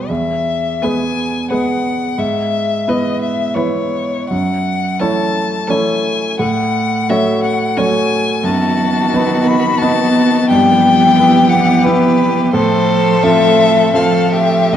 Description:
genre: classical, slow romantic movement for piano quintet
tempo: 87 BPM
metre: 3/4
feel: rubato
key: E major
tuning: A4 = 443 Hz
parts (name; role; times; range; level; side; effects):
- rich violin; melody; 0.0-14.8 s; B4 to B5; -17 LUFS; left 5 dB; none
- clear baby grand piano; accompaniment; 0.0-14.8 s; B1 to C#5; -16 LUFS; right 1 dB; none
- clear violin; second line; 0.8-14.8 s; F#4 to B4; -21 LUFS; left 1 dB; none
- rich cello; second line; 0.8-14.8 s; D#3 to G#3; -20 LUFS; right 7 dB; none
- rich viola; accompaniment; 0.8-14.8 s; A3 to C#4; -18 LUFS; equal; none
room: wet recital hall reverb, RT60 1.4 s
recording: dark, warm production, nothing above 10.4 kHz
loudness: -12 LUFS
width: side -10 dB against mid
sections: 0.1-14.8 A section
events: none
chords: 0.1 E; 2.2 E/G#; 4.3 F#m7; 6.4 F#m/A; 8.4 B7/F#; 10.5 Em/G; 12.5 F/A

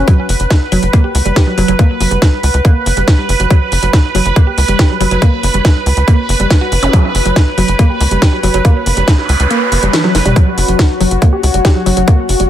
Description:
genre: psychedelic trance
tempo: 140 BPM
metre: 4/4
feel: straight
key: unclear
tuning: A4 = 441 Hz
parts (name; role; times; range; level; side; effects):
- bubbling stepped-filter texture; sustained chords; 0.0-12.5 s; F#4 to B4; -17 LUFS; right 2 dB; chorus, built-in reverb, sidechain pumping
- woody wave-folded pluck; riff; 0.0-12.4 s; E3 to G4; -18 LUFS; moving between left 3 dB and right 3 dB; chorus, auto-pan, sidechain pumping, tape echo
- tight sequencer bass; bass; 0.0-12.5 s; F#1 to C#2; -14 LUFS; equal; none
- airy breathy pad; texture; 0.2-12.5 s; C#4 to B5; -27 LUFS; right 1 dB; chorus, sidechain pumping
- electronic kick drum; drums; 0.1-12.2 s; none; -9 LUFS; equal; none
- techno drum kit; drums; 0.1-12.5 s; hi-hat, snare drum, toms; -18 LUFS; equal; none
- zap and noise sweep; sound effects; 6.8-10.4 s; none; -22 LUFS; right 2 dB; none
room: little or no reverb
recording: none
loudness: -9 LUFS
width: side -11 dB against mid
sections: 0.0-12.5 A section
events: fade-in on analog synth pad 0.0-12.5; noise sweep 8.9-10.4; kick drops out 9.5-10.4; drum fill 10.0-10.4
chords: 0.0 F#5

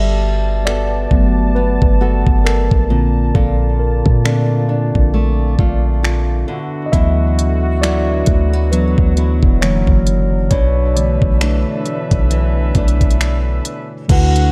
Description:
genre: contemporary R&B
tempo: 67 BPM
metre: 4/4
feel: swing 58% on 16ths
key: unclear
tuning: A4 = 440 Hz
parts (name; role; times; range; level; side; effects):
- mellow tine electric piano; accompaniment; 0.0-14.5 s; D3 to E5; -22 LUFS; equal; none
- warm brass ensemble; sustained chords; 0.0-14.5 s; Bb2 to A5; -29 LUFS; equal; none
- flamenco guitar; arpeggios; 0.0-14.5 s; F#2 to A4; -26 LUFS; equal; none
- warm 808-style bass; bass; 0.0-14.5 s; E1 to Bb2; -18 LUFS; equal; none
- smooth R&B drum kit; drums; 0.7-14.5 s; crash cymbal, finger snaps, hi-hat, kick drum; -18 LUFS; equal; none
- soft octave-layered synth lead; melody; 14.1-14.5 s; F#5; -22 LUFS; equal; chorus, phaser
room: digital ambience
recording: dark, warm production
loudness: -15 LUFS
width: mono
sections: 0.0-14.1 A section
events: tine electric piano solo 0.0-14.1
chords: 0.0 Gmaj9; 2.9 Bbmaj7; 6.5 D69; 9.6 F#7b13; 10.5 Bm11

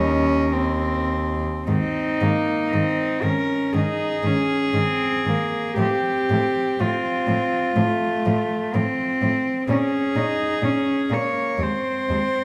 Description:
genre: classical, lyrical piece for cello ensemble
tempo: 51-64 BPM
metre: 4/4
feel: rubato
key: Ab major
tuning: A4 = 439 Hz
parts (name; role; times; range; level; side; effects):
- warm cello; melody; 0.0-12.4 s; Eb4 to Db5; -27 LUFS; equal; none
- warm cello; second line; 0.0-12.4 s; A3 to Eb4; -27 LUFS; equal; none
- warm cello; accompaniment; 0.0-12.2 s; Eb3 to Db4; -29 LUFS; equal; none
- warm cello; bass; 0.0-12.2 s; Eb2 to Bb2; -28 LUFS; equal; none
room: wet recital hall reverb, RT60 1.7 s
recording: none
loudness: -22 LUFS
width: mono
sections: 0.0-1.7 A section; 1.7-12.4 B section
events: none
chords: 0.0 Eb5; 1.7 Ab5; 5.8 F/A; 9.7 Bbm7; 11.6 Ab

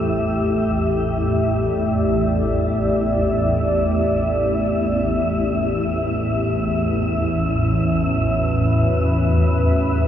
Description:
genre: dark ambient drone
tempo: free time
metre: none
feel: none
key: unclear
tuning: A4 = 438 Hz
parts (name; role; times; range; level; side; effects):
- dark analog pad; sustained chords; 0.0-10.1 s; A3 to E5; -21 LUFS; left 1 dB; chorus, shimmer reverb
- swarming drone; drone; 0.0-10.1 s; A1 to E2; -20 LUFS; equal; built-in reverb, phaser
- wind-like tuned noise texture; texture; 0.0-10.1 s; E4 to E5; -26 LUFS; right 1 dB; built-in reverb, shimmer reverb
room: wet cathedral reverb, RT60 4.8 s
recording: cassette tape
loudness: -17 LUFS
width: side -10 dB against mid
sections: 0.0-10.1 A section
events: filter sweep on synth drone 0.0-10.1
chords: 0.0 Am7; 7.1 C#m

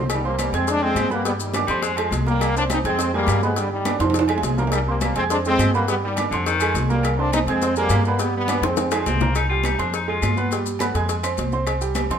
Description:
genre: latin, salsa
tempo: 207 BPM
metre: 4/4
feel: straight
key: C minor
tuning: A4 = 442 Hz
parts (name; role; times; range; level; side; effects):
- brilliant trombone section; melody; 0.0-8.9 s; C3 to Eb4; -23 LUFS; left 1 dB; none
- bright upright piano; accompaniment; 0.0-12.2 s; G3 to Ab6; -26 LUFS; right 5 dB; none
- upright bass; bass; 0.0-12.2 s; C2 to G2; -24 LUFS; equal; none
- agogo bells and timbales; percussion; 0.1-12.2 s; none; -28 LUFS; right 5 dB; none
- claves; percussion; 0.1-12.1 s; none; -37 LUFS; left 3 dB; none
- congas; percussion; 0.1-12.2 s; none; -30 LUFS; left 1 dB; none
- cowbell and bongos; percussion; 0.1-12.2 s; none; -30 LUFS; left 7 dB; none
- maracas; percussion; 0.1-12.2 s; none; -36 LUFS; left 8 dB; none
- clear baritone saxophone; second line; 1.7-2.2, 6.3-6.8, 8.9-10.6 s; D3 to F4; -25 LUFS; left 5 dB; none
room: moderate large studio reverb, RT60 1.3 s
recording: minimal, uncompressed stereo recording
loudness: -19 LUFS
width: side -8 dB against mid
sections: 0.1-9.4 A section; 9.4-12.2 B section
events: drum fill 4.0-4.7, 8.6-9.4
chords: 0.1 Cm; 0.7 Fm; 1.3 G5; 1.8 C5; 3.0 Fm; 3.6 G5; 4.1 Fm; 5.9 G5; 6.5 C5; 7.6 Fm; 8.2 G7; 8.8 Fm; 9.4 C5; 9.9 Fm; 10.5 G7; 11.1 Fm; 11.7 C5

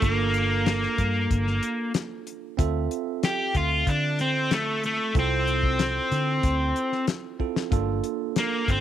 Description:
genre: straight-eighth soul blues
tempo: 94 BPM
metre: 4/4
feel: straight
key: D minor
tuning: A4 = 440 Hz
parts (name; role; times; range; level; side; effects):
- overdriven electric guitar; melody; 0.0-8.8 s; A3 to G4; -25 LUFS; left 1 dB; none
- bell-like tine electric piano; accompaniment; 0.0-8.8 s; Bb3 to E5; -31 LUFS; right 15 dB; none
- vintage muted fingered electric bass; bass; 0.0-8.8 s; G1 to D3; -27 LUFS; equal; none
- damped 70s drum kit; drums; 0.0-8.8 s; hi-hat, kick drum, snare drum; -27 LUFS; left 2 dB; none
room: light reverb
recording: 1960s-style stereo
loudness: -23 LUFS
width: side -11 dB against mid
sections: 0.0-8.8 A section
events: drum fill 7.4-7.7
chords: 0.0 Gm9; 2.6 Dm9; 7.7 Gm9

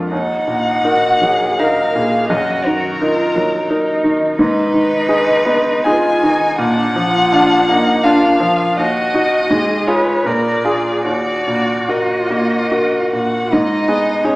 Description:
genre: classical, slow romantic movement for piano trio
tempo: 71-89 BPM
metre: 3/4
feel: rubato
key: Eb minor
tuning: A4 = 440 Hz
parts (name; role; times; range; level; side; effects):
- rich cello; second line; 0.0-14.4 s; C#4 to Cb5; -20 LUFS; right 1 dB; none
- bright baby grand piano; accompaniment; 0.0-14.4 s; Eb2 to Bb4; -16 LUFS; equal; none
- rich violin; melody; 0.1-14.4 s; Bb4 to Ab5; -18 LUFS; left 1 dB; none
room: wet recital hall reverb, RT60 1.5 s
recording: heard from further back in the room, small speaker sound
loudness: -13 LUFS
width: side -20 dB against mid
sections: 0.0-13.5 A section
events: none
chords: 0.1 Ebm; 2.3 Ebm/Gb; 4.4 Abm; 6.6 Bb; 8.8 Ebm; 9.5 Fdim/Ab; 10.3 Bb7; 11.1 Ebm; 13.5 G#m

